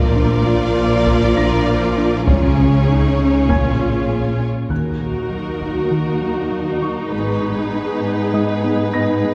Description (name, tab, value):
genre	cinematic, hybrid orchestral and electronic film score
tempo	99 BPM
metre	4/4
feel	straight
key	Eb minor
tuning	A4 = 440 Hz
part	rich symphonic violin section	second line	0.0-4.5 s	Ab4 to D5	-25 LUFS	equal	none
part	warm symphonic viola section	accompaniment	0.0-9.3 s	F3 to Ab4	-24 LUFS	equal	none
part	thumb-piano-like synth pluck	arpeggios	0.0-9.3 s	Db3 to Bb4	-26 LUFS	equal	chorus, phaser, tape echo
part	dark symphonic double bass section	bass	0.0-7.7 s	Ab1 to Eb2	-25 LUFS	equal	none
part	rich symphonic cello section	bass	0.0-9.3 s	Eb2 to Db3	-24 LUFS	equal	none
part	clear grand piano	texture	0.0-9.3 s	Eb5 to Bb6	-33 LUFS	equal	tape echo
part	taiko ensemble	drums	1.1-5.9 s	none	-25 LUFS	equal	none
part	warm symphonic violin section	melody	4.7-9.3 s	Bb4 to Cb5	-30 LUFS	equal	none
part	mellow French horn section	sustained chords	4.7-9.3 s	Bb3 to Gb4	-27 LUFS	equal	none
room	wet concert hall reverb, RT60 2.4 s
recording	heard from further back in the room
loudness	-17 LUFS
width	mono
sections	0.0-4.7 A section; 4.7-9.3 B section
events	none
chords	0.0 Bb; 2.3 Dbsus2; 3.5 Bbm7; 4.7 Ebm; 7.1 Abm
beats	0.46 1.07 1.67 | 2.28 2.88 3.49 4.10 | 4.70 5.31 5.92 6.52 | 7.13 7.73 8.34 8.95